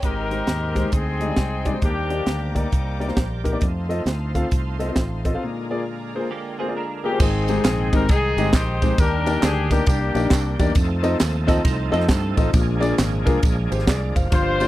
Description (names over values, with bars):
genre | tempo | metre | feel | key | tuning
uptempo gospel | 135 BPM | 4/4 | swing 63% on 8ths | unclear | A4 = 440 Hz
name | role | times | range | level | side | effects
warm horn section | melody | 0.0-3.4, 7.0-10.7, 14.3-14.7 s | G3 to C5 | -24 LUFS | left 2 dB | none
clear grand piano | accompaniment | 0.0-14.7 s | G2 to F5 | -25 LUFS | left 2 dB | none
bright tonewheel organ | sustained chords | 0.0-14.7 s | C3 to G5 | -32 LUFS | right 2 dB | slow rotary speaker, overdrive, chorus vibrato
warm studio string section | sustained chords | 0.0-7.2 s | C5 to D6 | -40 LUFS | equal | none
fingered electric bass | bass | 0.0-14.7 s | Gb1 to G2 | -24 LUFS | equal | none
crisp fusion drum kit | drums | 0.0-14.7 s | crash cymbal, hi-hat, kick drum, ride cymbal, snare drum | -20 LUFS | equal | none
clean electric guitar | second line | 6.3-7.2, 11.5-12.5 s | Bb3 to C5 | -30 LUFS | right 6 dB | ensemble chorus
tambourine and handclaps | percussion | 7.2-14.7 s | none | -36 LUFS | right 5 dB | none
room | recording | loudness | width
studio reverb | dry, close 1970s-style studio recording | -19 LUFS | side -15 dB against mid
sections
0.0-7.2 A section; 7.2-14.7 B section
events
break 5.4-7.2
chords
0.0 Abmaj7; 1.8 Ebmaj7; 3.6 F7; 5.4 Bb7; 7.2 Abmaj7; 9.0 Ebmaj7; 10.8 F7; 12.5 Bb7